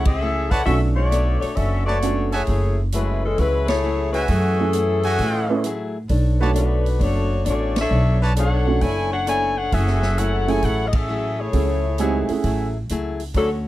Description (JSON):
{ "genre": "jazz, big band swing", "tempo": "132 BPM", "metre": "4/4", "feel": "swing 67% on 8ths", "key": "F# minor", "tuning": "A4 = 440 Hz", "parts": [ { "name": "clear saxophone section", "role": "melody", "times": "0.0-13.5 s", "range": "E3 to G#5", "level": "-23 LUFS", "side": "left 2 dB", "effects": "slapback echo" }, { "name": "picked old ladder-braced acoustic guitar", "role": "accompaniment", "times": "0.0-13.7 s", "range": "D3 to C#5", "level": "-29 LUFS", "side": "left 4 dB", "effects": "none" }, { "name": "warm baby grand piano", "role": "accompaniment", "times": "0.0-12.7 s", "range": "G#3 to C#5", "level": "-24 LUFS", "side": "right 6 dB", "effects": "none" }, { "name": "upright bass", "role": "bass", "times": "0.0-13.7 s", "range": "F#1 to A2", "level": "-21 LUFS", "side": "equal", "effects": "none" }, { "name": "swinging big-band drum kit", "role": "drums", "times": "0.1-13.5 s", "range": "hi-hat, kick drum, ride cymbal, snare drum", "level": "-26 LUFS", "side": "equal", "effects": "none" }, { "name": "bright trumpet section", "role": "stabs", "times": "0.5-12.7 s", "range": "F#4 to A5", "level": "-26 LUFS", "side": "right 2 dB", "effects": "none" } ], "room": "studio ambience", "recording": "dry, close 1970s-style studio recording", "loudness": "-18 LUFS", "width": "side -15 dB against mid", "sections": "0.0-13.7 A section", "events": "band accent 0.0, 3.6, 7.7, 10.9", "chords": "0.0 F#m9; 0.7 Bm9; 2.5 F#m9; 6.1 Bm9; 9.7 F#m9", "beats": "0.21 | 0.67 1.12 1.57 2.02 | 2.48 2.93 3.38 3.83 | 4.29 4.74 5.19 5.64 | 6.10 6.55 7.00 7.46 | 7.91 8.36 8.81 9.27 | 9.72 10.17 10.62 11.08 | 11.53 11.98 12.44 12.89 | 13.34" }